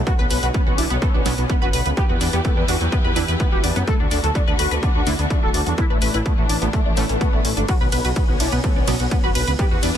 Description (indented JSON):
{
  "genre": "melodic techno",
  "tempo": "126 BPM",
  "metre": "4/4",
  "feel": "straight",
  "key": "B minor",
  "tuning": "A4 = 439 Hz",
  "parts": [
    { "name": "dark studio string section", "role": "sustained chords", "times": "0.0-10.0 s", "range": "D3 to B4", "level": "-29 LUFS", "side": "left 3 dB", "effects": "sidechain pumping" },
    { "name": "tight sequenced synth", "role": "arpeggios", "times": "0.0-10.0 s", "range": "F#3 to B5", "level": "-26 LUFS", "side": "equal", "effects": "chorus, phaser, sidechain pumping, digital delay" },
    { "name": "swelling detuned saw bass", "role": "bass", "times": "0.0-10.0 s", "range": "D1 to F#2", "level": "-23 LUFS", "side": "equal", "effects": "sidechain pumping" },
    { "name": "expressive synth lead", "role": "melody", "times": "0.1-10.0 s", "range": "A3 to A4", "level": "-26 LUFS", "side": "equal", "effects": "ensemble chorus, tape echo" },
    { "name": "electronic kick drum", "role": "drums", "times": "0.1-9.7 s", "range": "none", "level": "-20 LUFS", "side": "equal", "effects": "overdrive, studio reverb" },
    { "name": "techno drum kit", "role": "drums", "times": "0.1-10.0 s", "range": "hi-hat, ride cymbal", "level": "-28 LUFS", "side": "equal", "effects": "overdrive, studio reverb" },
    { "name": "synth brass stab", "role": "stabs", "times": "1.3-9.0 s", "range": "A2 to E4", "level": "-30 LUFS", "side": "right 3 dB", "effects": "none" },
    { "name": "swell", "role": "sound effects", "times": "6.9-7.7 s", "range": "none", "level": "-30 LUFS", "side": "left 3 dB", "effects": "none" }
  ],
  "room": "digital ambience",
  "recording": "dense, heavily limited modern master, lossy compression artefacts",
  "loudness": "-17 LUFS",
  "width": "side -10 dB against mid",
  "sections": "0.0-10.0 A section",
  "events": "swell 6.9-7.7",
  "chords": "0.1 Bmadd9; 2.0 Em; 3.9 D6; 5.8 Asus4; 7.7 Bmadd9"
}